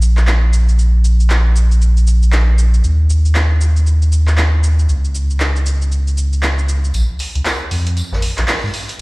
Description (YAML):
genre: deep house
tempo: 117 BPM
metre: 4/4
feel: swing 60% on 16ths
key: Bb minor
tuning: A4 = 438 Hz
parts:
  - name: warm sub bass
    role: bass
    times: 0.0-8.7 s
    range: Ab1 to Ab2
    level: -12 LUFS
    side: equal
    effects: none
  - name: punchy analog drum machine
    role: drums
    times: 0.0-9.0 s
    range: handclaps, hi-hat, shaker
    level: -22 LUFS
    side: equal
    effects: high-pass filter on snare, high-pass filter on perc, high-pass filter on hats
  - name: vintage drum kit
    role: drums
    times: 6.9-9.0 s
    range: hi-hat, snare drum, tambourine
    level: -28 LUFS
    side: equal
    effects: high-pass filter on hats, high-pass filter on snare, high-pass filter on perc, high-pass filter on room
room: small room ambience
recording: played on a big sound system in a bare room, large studio reverb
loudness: -12 LUFS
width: side -24 dB against mid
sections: 0.0-6.9 A section; 6.9-9.0 B section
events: build-up 6.9-9.0; filter sweep 6.9-9.0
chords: none